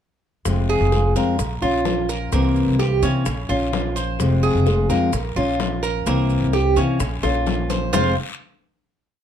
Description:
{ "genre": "latin, Cuban son and guajira", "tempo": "128 BPM", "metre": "4/4", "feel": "straight", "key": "F harmonic minor", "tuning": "A4 = 442 Hz", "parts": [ { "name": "fingerpicked steel-string acoustic guitar", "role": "accompaniment", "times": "0.5-8.1 s", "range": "F2 to F4", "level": "-22 LUFS", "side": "left 3 dB", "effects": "none" }, { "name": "upright bass", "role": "bass", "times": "0.5-8.2 s", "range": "F1 to C3", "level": "-22 LUFS", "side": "equal", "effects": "none" }, { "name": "bongos", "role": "percussion", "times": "0.5-8.0 s", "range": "none", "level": "-29 LUFS", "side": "left 7 dB", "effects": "none" }, { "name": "guiro", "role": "percussion", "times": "0.5-8.0 s", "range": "none", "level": "-37 LUFS", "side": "left 5 dB", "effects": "none" }, { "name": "maracas", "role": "percussion", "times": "0.5-8.0 s", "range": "none", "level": "-36 LUFS", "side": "right 9 dB", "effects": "none" }, { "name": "Cuban tres", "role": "arpeggios", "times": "0.7-8.2 s", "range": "Bb3 to F5", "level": "-24 LUFS", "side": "right 4 dB", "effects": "none" } ], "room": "moderate studio reverb, RT60 0.6 s", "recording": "dark, warm production", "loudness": "-18 LUFS", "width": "side -9 dB against mid", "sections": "0.5-7.9 montuno (vamp); 7.9-9.2 final chord", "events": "drum fill 7.2-7.9", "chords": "0.5 Fm; 1.4 Bbm; 2.3 C7; 3.3 Bbm; 4.2 Fm; 5.1 Bbm; 6.1 C7; 7.0 Bbm; 7.9 Fm", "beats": "| 0.46 0.93 1.39 1.86 | 2.33 2.80 3.26 3.73 | 4.20 4.67 5.13 5.60 | 6.07 6.54 7.00 7.47 | 7.93" }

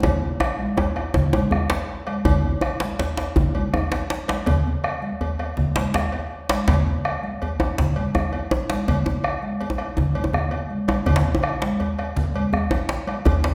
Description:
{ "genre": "west african traditional, West African drum ensemble", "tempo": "109 BPM (dotted quarters)", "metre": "12/8", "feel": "straight", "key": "none", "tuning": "none", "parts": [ { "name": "bombo", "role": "percussion", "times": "0.0-13.4 s", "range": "none", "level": "-28 LUFS", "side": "equal", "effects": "none" }, { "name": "congas", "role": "percussion", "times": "0.0-13.4 s", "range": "none", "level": "-29 LUFS", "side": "equal", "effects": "none" }, { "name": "cowbell", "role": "percussion", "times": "0.0-13.4 s", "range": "none", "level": "-34 LUFS", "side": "equal", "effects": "none" }, { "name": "djembe", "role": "percussion", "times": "0.0-13.4 s", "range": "none", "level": "-30 LUFS", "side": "equal", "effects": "none" }, { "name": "djembe", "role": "percussion", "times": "0.0-13.5 s", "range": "none", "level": "-26 LUFS", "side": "equal", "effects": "none" } ], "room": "wet recital hall reverb, RT60 1.3 s", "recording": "heard from further back in the room", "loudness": "-23 LUFS", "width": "mono", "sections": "0.0-2.3 A section; 2.3-13.5 B section", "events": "drum fill 0.0-2.3, 10.3-11.1", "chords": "none", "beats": "| 0.04 0.59 1.15 1.70 | 2.26 2.81 3.37 3.92 | 4.47 5.02 5.58 6.13 | 6.68 7.23 7.78 8.33 | 8.88 9.43 9.98 10.53 | 11.07 11.62 12.17 12.71 | 13.26" }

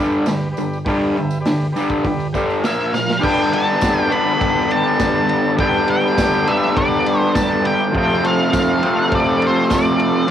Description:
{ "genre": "garage rock duo or trio", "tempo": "102 BPM", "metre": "4/4", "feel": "straight", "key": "G mixolydian", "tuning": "A4 = 445 Hz", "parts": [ { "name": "overdriven combo organ", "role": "sustained chords", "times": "0.0-10.3 s", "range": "F4 to F5", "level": "-25 LUFS", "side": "equal", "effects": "cassette tape" }, { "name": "raw garage guitar", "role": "riff", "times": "0.0-10.3 s", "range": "F2 to D4", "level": "-17 LUFS", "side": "equal", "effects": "overdrive, cassette tape" }, { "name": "tambourine", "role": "percussion", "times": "0.1-9.8 s", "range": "none", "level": "-39 LUFS", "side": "right 9 dB", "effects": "none" }, { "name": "raw garage drum kit", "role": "drums", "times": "0.3-10.3 s", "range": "crash cymbal, hi-hat, kick drum, ride cymbal, snare drum", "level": "-25 LUFS", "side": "equal", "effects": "none" }, { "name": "octave-fuzz lead guitar", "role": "melody", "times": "2.7-10.3 s", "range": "C5 to B5", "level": "-20 LUFS", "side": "equal", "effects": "distortion, cassette tape" } ], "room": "moderate small room reverb, RT60 0.5 s", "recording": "home recording on cassette", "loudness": "-15 LUFS", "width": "side -10 dB against mid", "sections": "0.0-3.2 A section; 3.2-10.3 B section", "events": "drum fill 2.9", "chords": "0.0 G; 2.6 Bb5; 3.2 G; 7.9 F", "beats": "0.27 | 0.86 1.45 2.04 2.64 | 3.23 3.82 4.41 5.00 | 5.59 6.17 6.76 7.35 | 7.94 8.53 9.12 9.71 | 10.30" }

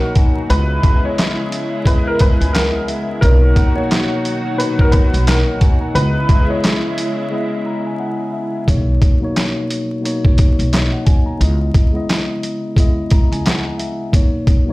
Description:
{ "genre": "hip hop, boom-bap hip-hop", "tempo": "88 BPM", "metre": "4/4", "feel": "swing 60% on 16ths", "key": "C# dorian", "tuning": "A4 = 445 Hz", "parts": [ { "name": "clear upright piano", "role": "melody", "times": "0.0-7.3 s", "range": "A#4 to C#5", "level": "-22 LUFS", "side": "equal", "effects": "high-pass filter, low-pass filter, ping-pong delay" }, { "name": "mellow tine electric piano", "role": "accompaniment", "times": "0.0-14.7 s", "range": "A#2 to A#5", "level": "-21 LUFS", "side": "left 1 dB", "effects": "medium stereo tremolo, cassette tape, high-pass filter, low-pass filter" }, { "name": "lush unison pad", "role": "sustained chords", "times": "0.0-8.7 s", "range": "C#3 to F#4", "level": "-25 LUFS", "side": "right 1 dB", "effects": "chorus, high-pass filter, low-pass filter" }, { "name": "boom bap sampler-style drum kit", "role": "drums", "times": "0.2-14.7 s", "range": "handclaps, hi-hat, kick drum, snare drum", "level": "-14 LUFS", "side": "equal", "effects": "none" }, { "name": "upright bass", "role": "bass", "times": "0.5-13.6 s", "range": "B1 to C#2", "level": "-16 LUFS", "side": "equal", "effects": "none" } ], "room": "little or no reverb", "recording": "played on a big sound system in a bare room, large studio reverb, vinyl crackle", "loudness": "-13 LUFS", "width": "side -20 dB against mid", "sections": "0.0-8.7 A section; 8.7-14.7 B section", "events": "break 7.3-8.7", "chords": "0.5 C#m7; 3.2 Bmaj7; 6.0 C#m7; 8.7 Bmaj7; 11.4 C#m7; 14.1 Bmaj7", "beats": "| 0.50 1.18 1.86 2.54 | 3.22 3.90 4.59 5.27 | 5.95 6.63 7.31 8.00 | 8.68 9.36 10.04 10.72 | 11.40 12.09 12.77 13.45 | 14.13" }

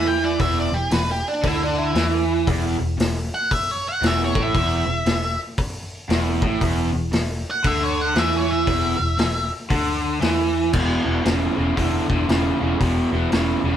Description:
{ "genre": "blues rock power trio and southern rock", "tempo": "116 BPM", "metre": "4/4", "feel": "swing 63% on 8ths", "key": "unclear", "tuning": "A4 = 443 Hz", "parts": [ { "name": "octave-fuzz lead guitar", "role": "melody", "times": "0.0-9.5 s", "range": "D4 to G5", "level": "-23 LUFS", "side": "equal", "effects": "distortion" }, { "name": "cranked stack guitar", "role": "riff", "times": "0.0-13.8 s", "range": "E2 to E3", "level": "-22 LUFS", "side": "right 1 dB", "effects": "overdrive" }, { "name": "vintage muted picked electric bass", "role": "bass", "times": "0.0-13.8 s", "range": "E1 to E2", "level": "-25 LUFS", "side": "left 1 dB", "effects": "none" }, { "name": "vintage drum kit", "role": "drums", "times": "0.4-13.5 s", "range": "crash cymbal, hi-hat, kick drum, snare drum", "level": "-25 LUFS", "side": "left 1 dB", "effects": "none" } ], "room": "moderate stone room reverb, RT60 1.0 s", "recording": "band playing live in one room", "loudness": "-18 LUFS", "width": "side -10 dB against mid", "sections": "0.0-10.7 A section; 10.7-13.8 B section", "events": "lead electric guitar solo 0.0-10.7", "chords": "0.0 E7(no3); 10.7 E5", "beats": "| 0.40 0.92 1.43 1.95 | 2.47 2.99 3.50 4.02 | 4.54 5.06 5.58 6.09 | 6.61 7.13 7.64 8.16 | 8.68 9.19 9.71 10.22 | 10.74 11.26 11.77 12.29 | 12.80 13.32" }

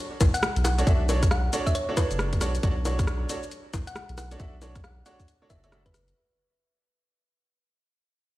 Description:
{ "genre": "UK garage, two-step garage", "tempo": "136 BPM", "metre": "4/4", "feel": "swing 62% on 16ths", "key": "unclear", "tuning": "A4 = 439 Hz", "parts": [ { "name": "saturated sub bass", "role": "bass", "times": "0.2-6.1 s", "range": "F#1 to B1", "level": "-27 LUFS", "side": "equal", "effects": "tube saturation" }, { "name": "electronic kick drum", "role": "drums", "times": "0.2-5.9 s", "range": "none", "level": "-24 LUFS", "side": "equal", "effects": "overdrive" }, { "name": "garage drum kit", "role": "drums", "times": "0.2-6.1 s", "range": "bongos, hi-hat, rim click, shaker", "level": "-30 LUFS", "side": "left 1 dB", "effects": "none" }, { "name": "thumb-piano-like synth pluck", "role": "melody", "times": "0.3-6.2 s", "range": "B4 to F#5", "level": "-33 LUFS", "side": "equal", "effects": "chorus, dub echo" }, { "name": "bright baby grand piano", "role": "stabs", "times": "0.8-5.8 s", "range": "D4 to E5", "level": "-32 LUFS", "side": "right 2 dB", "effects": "dub echo" } ], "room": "light reverb", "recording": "played on a big sound system in a bare room, stone room reverb", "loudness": "-23 LUFS", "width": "side -17 dB against mid", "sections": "0.0-6.2 A section", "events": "drop 0.0-6.2; fade-out 0.0-6.2", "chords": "0.0 Bm9", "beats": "0.43 | 0.87 1.31 1.75 2.19 | 2.63 3.07 3.52 3.96 | 4.40 4.84 5.28 5.72" }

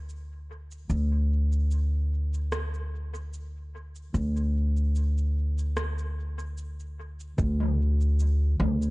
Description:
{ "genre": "ambient dub", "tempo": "74 BPM", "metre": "4/4", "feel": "swing 54% on 16ths", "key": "unclear", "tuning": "A4 = 441 Hz", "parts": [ { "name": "upright bass", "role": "bass", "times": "0.0-8.9 s", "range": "D2", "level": "-26 LUFS", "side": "equal", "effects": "none" }, { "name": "organic electronic drum kit", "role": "drums", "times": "0.1-8.9 s", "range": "cabasa, rim click, toms", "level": "-36 LUFS", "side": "equal", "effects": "overdrive, dub echo" }, { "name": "electronic kick drum", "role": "drums", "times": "7.4-7.6 s", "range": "none", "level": "-31 LUFS", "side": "equal", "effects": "overdrive" } ], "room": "little or no reverb", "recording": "nothing above 10.3 kHz", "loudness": "-25 LUFS", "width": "side -22 dB against mid", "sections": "0.0-7.4 A section; 7.4-8.9 B section", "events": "none", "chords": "none", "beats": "0.09 | 0.90 1.71 2.52 3.33 | 4.14 4.96 5.77 6.58 | 7.39 8.20" }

